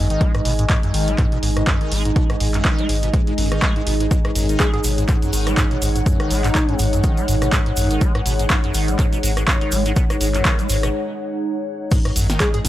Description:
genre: acid house.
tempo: 123 BPM.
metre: 4/4.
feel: swing 56% on 16ths.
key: unclear.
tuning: A4 = 440 Hz.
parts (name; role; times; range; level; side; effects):
dark analog pad; sustained chords; 0.0-12.7 s; G#3 to D#5; -26 LUFS; equal; chorus, phaser, sidechain pumping.
liquid acid bass; riff; 0.0-12.7 s; F#2 to G#3; -25 LUFS; equal; phaser, overdrive, ensemble chorus, sidechain pumping, analog delay.
saturated sub bass; bass; 0.0-12.7 s; G#1; -21 LUFS; equal; sidechain pumping.
ethereal airy pad; texture; 0.0-12.7 s; D#4 to G#5; -29 LUFS; equal; ensemble chorus, built-in reverb, sidechain pumping.
punchy analog drum machine; drums; 0.1-12.7 s; crash cymbal, handclaps, hi-hat, rim click, snare drum; -24 LUFS; equal; none.
electronic kick drum; drums; 0.2-12.5 s; none; -19 LUFS; equal; none.
tube shaker; percussion; 4.1-12.7 s; none; -31 LUFS; right 2 dB; none.
plucky unison lead; melody; 4.6-6.8, 12.4-12.6 s; D#4 to G#4; -27 LUFS; left 1 dB; analog delay.
room: little or no reverb.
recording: dry, gritty hardware recording, transformer saturation.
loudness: -16 LUFS.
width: side -14 dB against mid.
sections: 0.0-11.9 A section.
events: fade-in on ambient pad 0.0-11.9; break 10.9-11.9.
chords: 0.0 G#5.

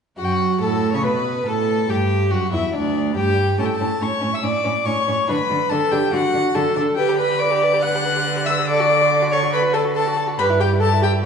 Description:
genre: quick classical-period movement for string quartet.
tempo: 141 BPM.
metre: 4/4.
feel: straight.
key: D major.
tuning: A4 = 441 Hz.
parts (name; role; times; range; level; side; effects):
rich violin; melody; 0.2-11.1 s; D5 to F#6; -23 LUFS; left 7 dB; none.
rich violin; second line; 0.2-11.2 s; C#4 to C#5; -25 LUFS; left 2 dB; none.
warm viola; accompaniment; 0.2-11.3 s; D4 to F#5; -21 LUFS; right 2 dB; none.
rich cello; bass; 0.2-11.3 s; D2 to D3; -22 LUFS; right 3 dB; none.
room: wet recital hall reverb, RT60 1.7 s.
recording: heard from further back in the room, nothing above 10.9 kHz.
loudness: -17 LUFS.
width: side -6 dB against mid.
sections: 0.2-11.3 A section.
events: none.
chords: 0.2 F#madd11; 1.9 G5; 3.6 A; 5.3 D; 7.0 G/D; 8.7 D; 10.4 Em/G.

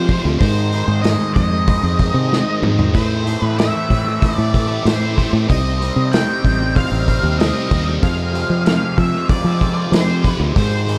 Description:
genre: psychedelic rock.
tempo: 94 BPM.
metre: 4/4.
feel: straight.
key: unclear.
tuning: A4 = 438 Hz.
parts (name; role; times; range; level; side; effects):
octave-fuzz lead guitar; melody; 0.0-11.0 s; C5 to G5; -26 LUFS; equal; distortion, tape echo.
percussive tonewheel organ; sustained chords; 0.0-11.0 s; G3 to B5; -32 LUFS; equal; slow rotary speaker, overdrive.
fuzz guitar; riff; 0.0-11.0 s; F2 to C4; -24 LUFS; equal; distortion, phaser, tape echo.
fingered electric bass; bass; 0.0-11.0 s; A1 to F3; -21 LUFS; equal; none.
vintage drum kit; drums; 0.1-11.0 s; hi-hat, kick drum, snare drum, toms; -21 LUFS; equal; none.
room: small room reverb.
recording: echo-heavy mix.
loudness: -17 LUFS.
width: mono.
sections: 0.0-11.0 A section.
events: drum fill 2.3-3.0.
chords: 0.4 G#; 3.0 Amadd9; 5.5 Cm; 8.0 Fm.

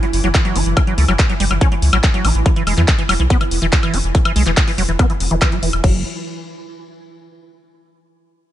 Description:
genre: psychedelic trance.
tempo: 142 BPM.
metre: 4/4.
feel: straight.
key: unclear.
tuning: A4 = 443 Hz.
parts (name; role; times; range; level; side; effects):
pulsing gated texture; sustained chords; 0.0-5.8 s; E3 to E4; -26 LUFS; right 2 dB; chorus, built-in reverb, sidechain pumping.
liquid acid bass; riff; 0.0-6.0 s; E3 to F#4; -22 LUFS; equal; chorus, auto-pan, sidechain pumping, ping-pong delay.
big-room dance drum kit; drums; 0.0-5.9 s; crash cymbal, handclaps, hi-hat, woodblock; -21 LUFS; left 2 dB; studio reverb.
round analog bass; bass; 0.1-6.0 s; E1 to E2; -17 LUFS; equal; tube saturation.
electronic kick drum; drums; 0.3-5.9 s; none; -15 LUFS; equal; studio reverb.
room: little or no reverb.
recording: nothing above 11.0 kHz.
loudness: -13 LUFS.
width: side -13 dB against mid.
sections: 0.0-5.8 A section; 5.8-7.5 B section.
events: drop 0.0-5.8.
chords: 0.0 F#5; 2.5 E5; 5.8 N.C..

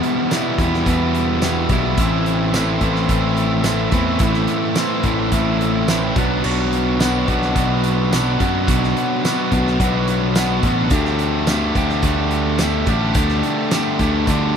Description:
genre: indie rock.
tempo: 107 BPM.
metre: 4/4.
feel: straight.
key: unclear.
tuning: A4 = 442 Hz.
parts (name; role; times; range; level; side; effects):
fuzz guitar; riff; 0.0-14.6 s; E2 to G4; -18 LUFS; equal; distortion.
loose indie drum kit; drums; 0.0-14.4 s; crash cymbal, hi-hat, kick drum, snare drum, tambourine; -22 LUFS; equal; none.
modern bright picked electric bass; bass; 0.6-14.5 s; A1 to F#2; -21 LUFS; equal; none.
room: little or no reverb.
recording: rough home demo mix.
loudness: -16 LUFS.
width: side -7 dB against mid.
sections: 0.0-14.6 A section.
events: none.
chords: 0.0 Em; 2.0 Am; 6.2 Bm; 10.9 Dsus4.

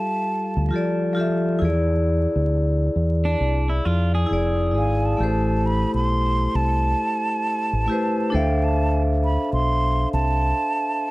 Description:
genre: lo-fi hip hop.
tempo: 67 BPM.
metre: 4/4.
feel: swing 65% on 16ths.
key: A minor.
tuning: A4 = 438 Hz.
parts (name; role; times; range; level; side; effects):
breathy mellow silver concert flute; melody; 0.0-11.1 s; G5 to C6; -25 LUFS; right 2 dB; plate reverb, tape echo.
vibraphone with medium mallets; accompaniment; 0.0-11.1 s; F3 to F5; -24 LUFS; left 1 dB; none.
deep dub fingered electric bass; bass; 0.6-10.5 s; F1 to F2; -21 LUFS; equal; none.
electric guitar at the edge of break-up; second line; 3.3-5.2 s; D4 to G#4; -29 LUFS; right 2 dB; tape echo.
room: light reverb.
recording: vinyl crackle.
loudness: -19 LUFS.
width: side -20 dB against mid.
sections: 0.0-11.1 A section.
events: none.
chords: 0.0 Fmaj9; 1.6 E7b9; 5.2 Am9; 8.3 Dm9.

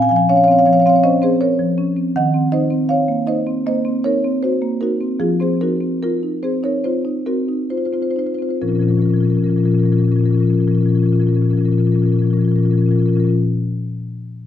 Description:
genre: classical, contemporary piece for solo marimba.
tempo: 65-82 BPM.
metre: 4/4.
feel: rubato.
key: Bb minor.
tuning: A4 = 439 Hz.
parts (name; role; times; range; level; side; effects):
marimba with medium mallets; solo; 0.0-13.4 s; Bb2 to Ab5; -15 LUFS; left 1 dB; none.
room: wet recital hall reverb, RT60 1.3 s.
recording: none.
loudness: -14 LUFS.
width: side -10 dB against mid.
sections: 0.0-8.6 A section; 8.6-12.2 B section.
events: slowing down 0.7-8.6.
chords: 0.0 Bbm9; 2.1 Ebm6; 5.2 F7sus4; 8.6 Bbm.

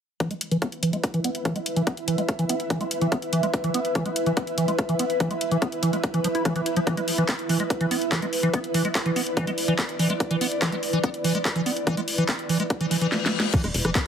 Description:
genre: psychedelic trance.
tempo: 144 BPM.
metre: 4/4.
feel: straight.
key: unclear.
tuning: A4 = 442 Hz.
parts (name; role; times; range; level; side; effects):
liquid acid bass; riff; 0.2-14.0 s; E3 to E4; -26 LUFS; equal; chorus, auto-pan, sidechain pumping, ping-pong delay.
drum and bass drum kit; drums; 0.2-14.0 s; crash cymbal, handclaps, hi-hat, rim click, snare drum; -28 LUFS; left 1 dB; overdrive.
electronic kick drum; drums; 0.2-14.0 s; none; -24 LUFS; equal; overdrive, high-pass filter on kick.
ethereal airy pad; texture; 1.0-14.1 s; E4 to E5; -28 LUFS; right 1 dB; ensemble chorus, built-in reverb, sidechain pumping.
reverse cymbal; sound effects; 12.9-13.5 s; none; -32 LUFS; left 9 dB; none.
plucky analog bass; bass; 13.6-13.9 s; E1; -28 LUFS; equal; tube saturation.
room: moderate plate reverb, RT60 1.3 s.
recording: heavily compressed radio sound, multiband compression.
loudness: -22 LUFS.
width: side -8 dB against mid.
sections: 0.2-13.5 A section.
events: filter sweep on acid bass 0.2-13.5; reverse cymbal 12.9-13.5; drum fill 13.1-13.5.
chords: 0.2 E5.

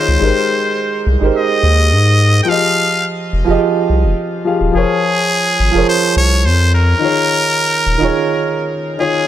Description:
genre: sunset chillout.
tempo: 106 BPM.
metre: 4/4.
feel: swing 53% on 16ths.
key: unclear.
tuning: A4 = 439 Hz.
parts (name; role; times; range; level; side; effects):
trumpet with straight mute; melody; 0.0-9.3 s; Ab4 to G5; -16 LUFS; equal; tape echo.
dark grand piano; accompaniment; 0.0-9.3 s; Eb3 to F5; -16 LUFS; moving between left 5 dB and right 7 dB; auto-pan, tape echo.
round analog bass; bass; 0.1-8.1 s; Eb1 to Ab2; -13 LUFS; equal; none.
room: light reverb, studio reverb.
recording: none.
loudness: -12 LUFS.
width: side -11 dB against mid.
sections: 0.0-9.3 A section.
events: break 8.1-9.3.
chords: 0.2 Abmaj7; 2.5 Fm7; 4.7 Bbm9/F; 7.0 Eb9sus4.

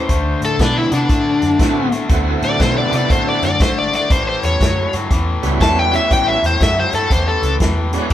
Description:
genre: electric blues shuffle.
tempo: 120 BPM.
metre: 4/4.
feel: swing 65% on 8ths.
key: unclear.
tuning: A4 = 440 Hz.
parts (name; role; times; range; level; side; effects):
overdriven slide guitar; melody; 0.0-7.5 s; D4 to A5; -18 LUFS; left 2 dB; none.
cranked stack guitar; riff; 0.0-8.1 s; A2 to B3; -22 LUFS; left 3 dB; overdrive.
vintage muted fingered electric bass; bass; 0.1-8.1 s; G#1 to C3; -21 LUFS; equal; none.
vintage drum kit; drums; 0.1-8.1 s; hi-hat, kick drum, snare drum; -19 LUFS; equal; none.
bright tonewheel organ; accompaniment; 1.6-8.1 s; G3 to F#4; -23 LUFS; right 6 dB; slow rotary speaker, overdrive.
room: moderate large studio reverb, RT60 1.4 s.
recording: band playing live in one room.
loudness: -13 LUFS.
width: side -12 dB against mid.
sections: 0.0-8.1 A section.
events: electric slide guitar solo 0.0-8.1.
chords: 0.1 D13; 4.1 A13.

